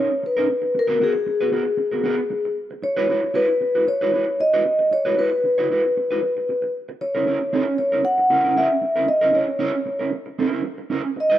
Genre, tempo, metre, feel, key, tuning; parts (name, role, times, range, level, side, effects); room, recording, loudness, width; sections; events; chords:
disco; 115 BPM; 4/4; straight; A4 = 440 Hz
vibraphone with soft mallets; melody; 0.0-11.4 s; G#4 to F#5; -19 LUFS; left 1 dB
electric guitar at the edge of break-up; accompaniment; 0.0-11.4 s; B3 to D#5; -25 LUFS; right 5 dB; harmonic tremolo
moderate echo chamber reverb, RT60 1.8 s, studio reverb; dark, warm production; -18 LUFS; side -12 dB against mid
0.0-7.0 A section; 7.0-11.4 B section
0.0 Bmaj9; 0.8 G#m9; 2.6 F#7sus4; 7.0 F#7 (rootless)